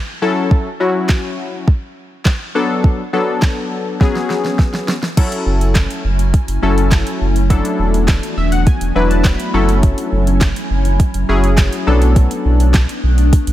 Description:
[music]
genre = dance-pop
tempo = 103 BPM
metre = 4/4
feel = straight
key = F# minor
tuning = A4 = 440 Hz
[part]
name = warm analog keys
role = accompaniment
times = 0.2-12.8 s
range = F#3 to B5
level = -18 LUFS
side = left 3 dB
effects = chorus, sidechain pumping
[part]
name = smooth R&B drum kit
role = drums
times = 0.5-13.5 s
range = crash cymbal, handclaps, hi-hat, kick drum, snare drum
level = -16 LUFS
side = equal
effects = none
[part]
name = glassy FM pad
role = sustained chords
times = 5.5-13.5 s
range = E3 to G#5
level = -22 LUFS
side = left 1 dB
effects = ensemble chorus, built-in reverb, sidechain pumping
[part]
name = round analog bass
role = bass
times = 5.5-13.5 s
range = E1 to B1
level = -14 LUFS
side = equal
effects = sidechain pumping
[sound]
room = little or no reverb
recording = none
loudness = -13 LUFS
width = side -13 dB against mid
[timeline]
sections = 0.0-5.2 A section; 5.2-13.5 B section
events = drum fill 4.0-5.2; synth keys fill 8.1-9.8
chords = 0.2 F#m7; 2.5 Bm7; 4.0 C#7sus4; 5.2 F#m7; 7.5 E9sus4; 9.5 F#m7; 11.9 Bm7

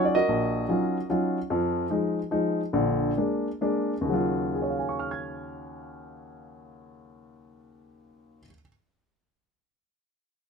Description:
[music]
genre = jazz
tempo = 126-149 BPM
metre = 3/4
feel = swing 66% on 8ths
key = Eb minor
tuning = A4 = 440 Hz
[part]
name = warm grand piano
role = solo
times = 0.0-8.7 s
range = Bb1 to Ab6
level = -25 LUFS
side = equal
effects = none
[sound]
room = light reverb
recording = minimal, uncompressed stereo recording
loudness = -24 LUFS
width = side -5 dB against mid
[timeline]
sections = 0.0-1.5 A section; 1.5-4.1 B section; 4.1-6.9 C section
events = slowing down 1.5-4.1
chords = 0.0 Ebm9; 1.5 Fm7; 2.7 Bb7; 4.1 Ebm9

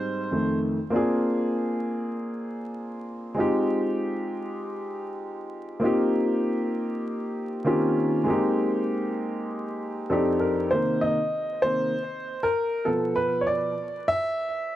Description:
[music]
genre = hip hop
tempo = 98 BPM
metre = 4/4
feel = swing 64% on 16ths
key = F dorian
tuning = A4 = 440 Hz
[part]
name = warm upright piano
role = solo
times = 0.0-14.8 s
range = F2 to E5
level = -24 LUFS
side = equal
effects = tape echo
[sound]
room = wet small room reverb, RT60 0.5 s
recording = dark, warm production, vinyl crackle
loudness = -24 LUFS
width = side -13 dB against mid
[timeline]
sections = 0.9-10.7 A section; 10.7-14.8 B section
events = upright piano solo 10.7-14.8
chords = 0.3 F7; 0.9 Bb7; 3.4 Fm9; 5.8 Eb69; 7.7 Eb13; 8.3 Abmaj7; 10.1 F13; 10.7 Cm7; 12.9 Bm7b5

